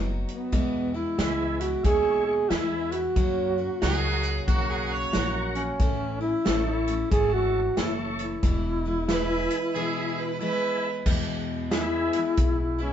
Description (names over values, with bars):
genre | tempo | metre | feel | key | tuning
honky-tonk and classic country | 91 BPM | 4/4 | swing 63% on 8ths | E major | A4 = 442 Hz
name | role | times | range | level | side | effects
picked steel-string acoustic guitar | accompaniment | 0.0-12.9 s | E2 to F#4 | -33 LUFS | left 2 dB | none
upright bass | bass | 0.0-12.9 s | E1 to F#2 | -31 LUFS | equal | none
mellow duduk | melody | 0.3-12.9 s | B3 to G#4 | -26 LUFS | equal | none
natural country drum kit | drums | 0.3-12.6 s | crash cymbal, hi-hat, kick drum, snare drum | -27 LUFS | equal | none
tonewheel organ | accompaniment | 1.2-12.9 s | E4 to C#5 | -34 LUFS | right 2 dB | chorus vibrato, slow rotary speaker
clear fiddle | second line | 3.8-10.9 s | F#4 to C#5 | -30 LUFS | right 4 dB | none
pedal steel guitar | sustained chords | 11.7-12.9 s | G#4 to E5 | -34 LUFS | left 2 dB | none
room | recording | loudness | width
moderate studio reverb, RT60 0.8 s | band playing live in one room, nothing above 7.8 kHz | -23 LUFS | side -9 dB against mid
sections
0.0-11.1 A section; 11.1-12.9 B section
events
break 9.7-11.1; duduk solo 11.1-12.9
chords
0.0 B; 0.5 E; 3.2 F#; 5.8 A; 8.4 E